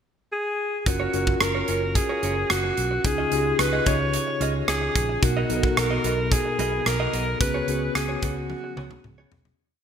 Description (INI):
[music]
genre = 1980s-style pop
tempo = 110 BPM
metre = 4/4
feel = straight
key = F# major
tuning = A4 = 440 Hz
[part]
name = bright alto saxophone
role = melody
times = 0.3-9.1 s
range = F#4 to C#5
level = -26 LUFS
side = equal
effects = ping-pong delay
[part]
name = mellow tine electric piano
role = accompaniment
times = 0.9-9.6 s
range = B2 to A#4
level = -28 LUFS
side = left 1 dB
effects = medium stereo tremolo
[part]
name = direct-recorded clean electric guitar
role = riff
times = 0.9-9.5 s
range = B3 to D#5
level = -33 LUFS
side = right 5 dB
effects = lush chorus, ping-pong delay
[part]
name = vintage muted fingered electric bass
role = bass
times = 0.9-9.5 s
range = F#1 to C#2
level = -29 LUFS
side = equal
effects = none
[part]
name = modern studio drum kit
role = drums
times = 0.9-9.6 s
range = hi-hat, kick drum, rim click, toms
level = -26 LUFS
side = right 1 dB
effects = gated reverb
[sound]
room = moderate plate reverb, RT60 2.4 s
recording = bright 1980s-style digital production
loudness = -21 LUFS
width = side -8 dB against mid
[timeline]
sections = 0.0-0.9 pickup bar; 0.9-9.6 verse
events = fade-out 7.4-9.6; drum fill 8.5-9.6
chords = 0.0 N.C.; 0.9 F#maj7; 3.0 C#add9; 5.2 Bmaj7; 7.4 C#7sus4